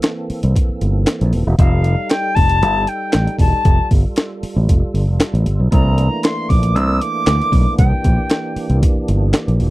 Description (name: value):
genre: funk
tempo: 116 BPM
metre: 4/4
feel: straight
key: unclear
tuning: A4 = 440 Hz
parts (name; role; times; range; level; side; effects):
- percussive tonewheel organ; sustained chords; 0.0-9.7 s; E3 to A4; -26 LUFS; right 2 dB; slow rotary speaker, chorus vibrato
- breakbeat sampler-style drum kit; drums; 0.0-9.7 s; handclaps, hi-hat, kick drum, snare drum; -15 LUFS; equal; none
- fingered electric bass; bass; 0.3-9.7 s; Eb1 to D2; -15 LUFS; equal; none
- silver concert flute; melody; 1.6-8.8 s; F5 to E6; -20 LUFS; left 2 dB; none
room: little or no reverb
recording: dry, close 1970s-style studio recording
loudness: -13 LUFS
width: side -18 dB against mid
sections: 0.0-9.7 A section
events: none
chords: 0.0 C13; 1.6 F9; 5.7 C13